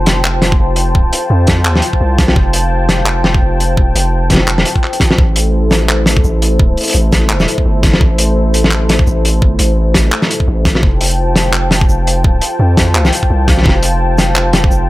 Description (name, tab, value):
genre	half-time drum and bass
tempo	170 BPM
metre	4/4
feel	swing 57% on 16ths, half-time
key	unclear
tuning	A4 = 438 Hz
part	dark analog pad	sustained chords	0.0-14.9 s	A3 to A5	-18 LUFS	left 1 dB	chorus, sidechain pumping
part	long sustained 808-style bass	bass	0.0-14.9 s	F1 to F2	-14 LUFS	equal	none
part	crunchy breakbeat drum kit	drums	0.1-14.8 s	handclaps, hi-hat, shaker, snare drum	-14 LUFS	equal	none
part	electronic kick drum	drums	0.5-14.7 s	none	-13 LUFS	equal	none
room	light reverb, small room ambience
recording	none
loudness	-10 LUFS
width	side -17 dB against mid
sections	0.0-14.9 A section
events	none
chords	0.0 F; 5.2 Am; 10.8 F